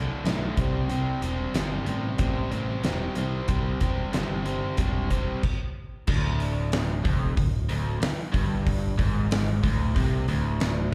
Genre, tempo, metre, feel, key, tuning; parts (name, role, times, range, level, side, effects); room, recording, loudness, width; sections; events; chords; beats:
blues rock power trio and southern rock; 93 BPM; 4/4; straight; A4 = 436 Hz
biting overdriven guitar; riff; 0.0-10.9 s; D2 to C4; -32 LUFS; equal
overdriven fingered electric bass; bass; 0.0-10.9 s; D1 to C2; -30 LUFS; equal
huge arena drum kit; drums; 0.3-10.8 s; crash cymbal, hi-hat, kick drum, snare drum; -30 LUFS; equal
small room ambience; live gig heard through the venue's PA, club reverb; -26 LUFS; mono
0.0-6.1 A section; 6.1-10.9 B section
stop 5.4-6.1
0.0 D5; 0.6 C; 6.1 D5
0.26 | 0.90 1.55 2.19 2.84 | 3.49 4.14 4.79 5.43 | 6.08 6.73 7.38 8.02 | 8.67 9.31 9.96 10.61